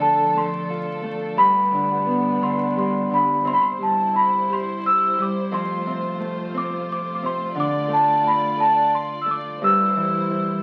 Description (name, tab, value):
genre	children's music, lullaby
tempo	59 BPM (dotted quarters)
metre	6/8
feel	straight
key	C major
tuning	A4 = 440 Hz
part	large celesta	melody	0.0-10.6 s	A5 to E6	-22 LUFS	equal	none
part	Celtic harp	accompaniment	0.0-10.6 s	F2 to A4	-28 LUFS	equal	none
part	warm symphonic string section	sustained chords	0.0-10.6 s	F3 to D5	-33 LUFS	equal	none
room	wet studio reverb, RT60 0.6 s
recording	very old 78 rpm record, vinyl crackle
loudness	-21 LUFS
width	mono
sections	0.0-3.5 A section; 3.5-10.6 B section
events	none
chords	0.0 Dm; 1.4 G; 3.5 C; 5.5 F; 7.6 Dm; 9.6 C/G